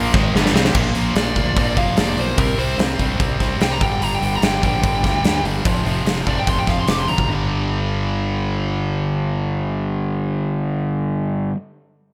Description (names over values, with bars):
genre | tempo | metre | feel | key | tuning
hard rock | 147 BPM | 4/4 | straight | G minor | A4 = 442 Hz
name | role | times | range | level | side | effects
heavy high-gain guitar | riff | 0.0-0.8 s | G2 to C4 | -28 LUFS | equal | none
overdriven electric guitar | riff | 0.0-11.6 s | F2 to C4 | -27 LUFS | equal | none
sludgy distorted guitar | riff | 0.0-11.6 s | F2 to C4 | -27 LUFS | equal | overdrive
fuzz fingered electric bass | bass | 0.0-11.5 s | F1 to D2 | -27 LUFS | equal | overdrive
huge arena drum kit | drums | 0.1-7.3 s | crash cymbal, hi-hat, kick drum, snare drum | -22 LUFS | equal | gated reverb
dark smooth lead guitar | melody | 1.2-7.3 s | Bb4 to D6 | -26 LUFS | equal | overdrive, delay
room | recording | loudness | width
light reverb, small room ambience | bright 1980s-style digital production | -19 LUFS | mono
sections
0.8-7.3 A section; 7.3-10.5 B section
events
drum fill 0.3-0.8; lead electric guitar solo 0.8-7.3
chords
0.1 G5; 0.8 Bb; 2.4 C5; 3.8 G5; 5.6 F5; 7.3 G5